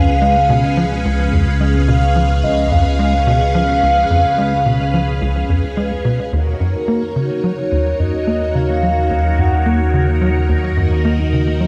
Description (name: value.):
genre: ambient, sequencer-driven space music.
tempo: 108 BPM.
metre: 4/4.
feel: straight.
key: Eb minor.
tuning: A4 = 440 Hz.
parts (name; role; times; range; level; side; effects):
mellow horn-like synth lead; melody; 0.0-10.2 s; Bb4 to Gb5; -22 LUFS; equal; subtle chorus, delay.
string machine, full ensemble; sustained chords; 0.0-11.7 s; Db4 to F5; -23 LUFS; equal; phaser, ensemble chorus.
tight sequencer bass; riff; 0.0-11.7 s; Db2 to Bb3; -20 LUFS; equal; analog chorus, delay.
analog drone; bass; 0.0-11.7 s; Db2 to Eb2; -20 LUFS; equal; chorus.
room: moderate plate reverb, RT60 2.9 s.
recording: echo-heavy mix.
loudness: -16 LUFS.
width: mono.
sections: 0.0-6.3 A section; 6.3-11.7 B section.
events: none.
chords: 0.0 Db7; 6.3 Ebm7.